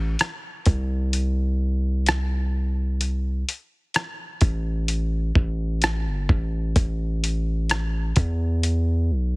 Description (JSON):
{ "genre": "contemporary R&B", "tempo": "64 BPM", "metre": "4/4", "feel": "straight", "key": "unclear", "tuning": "A4 = 440 Hz", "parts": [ { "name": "long sustained 808-style bass", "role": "bass", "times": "0.0-9.4 s", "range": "G1 to E2", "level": "-22 LUFS", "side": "equal", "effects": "none" }, { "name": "dusty soul sampler-style drum kit", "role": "drums", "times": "0.2-8.9 s", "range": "hi-hat, kick drum, rim click", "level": "-23 LUFS", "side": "equal", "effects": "none" } ], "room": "little or no reverb", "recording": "heavily compressed radio sound", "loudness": "-21 LUFS", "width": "side -27 dB against mid", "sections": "0.0-9.4 A section", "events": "none", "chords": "none", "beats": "0.20 1.13 2.07 | 3.01 3.95 4.88 5.82 | 6.76 7.70 8.63" }